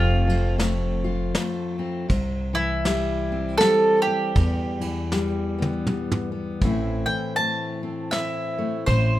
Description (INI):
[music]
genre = acoustic folk duo or small band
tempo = 80 BPM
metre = 3/4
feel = swing 60% on 8ths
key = unclear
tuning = A4 = 442 Hz
[part]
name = mandolin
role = melody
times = 0.0-9.2 s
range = E4 to A5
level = -23 LUFS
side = right 2 dB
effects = none
[part]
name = fingerpicked steel-string acoustic guitar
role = accompaniment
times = 0.0-9.2 s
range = E2 to F4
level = -27 LUFS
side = left 3 dB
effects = none
[part]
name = upright bass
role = bass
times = 0.0-9.2 s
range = F1 to E2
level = -24 LUFS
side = equal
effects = none
[part]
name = vintage brush drum kit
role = drums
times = 0.3-9.1 s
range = kick drum, ride cymbal, snare drum, toms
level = -27 LUFS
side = equal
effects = none
[sound]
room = light reverb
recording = minimal, uncompressed stereo recording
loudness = -21 LUFS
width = side -14 dB against mid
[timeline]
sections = 0.0-6.6 A section; 6.6-9.2 B section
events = drum fill 5.1-6.6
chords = 0.0 F; 2.1 C; 4.4 Em; 6.6 Am